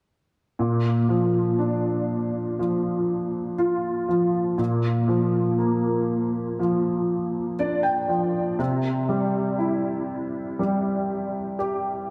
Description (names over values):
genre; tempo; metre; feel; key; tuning
pop; 60 BPM; 4/4; straight; Bb major; A4 = 440 Hz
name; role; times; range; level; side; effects
clear grand piano; accompaniment; 0.6-12.1 s; Bb2 to G5; -24 LUFS; equal; ensemble chorus
room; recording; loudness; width
wet plate reverb, RT60 2.7 s; dreamy mix soaked in reverb; -24 LUFS; mono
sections
0.6-12.1 A section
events
grand piano fill 7.1-8.6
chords
0.6 Bb; 8.6 C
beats
| 0.59 1.59 2.59 3.59 | 4.59 5.59 6.59 7.59 | 8.59 9.59 10.59 11.59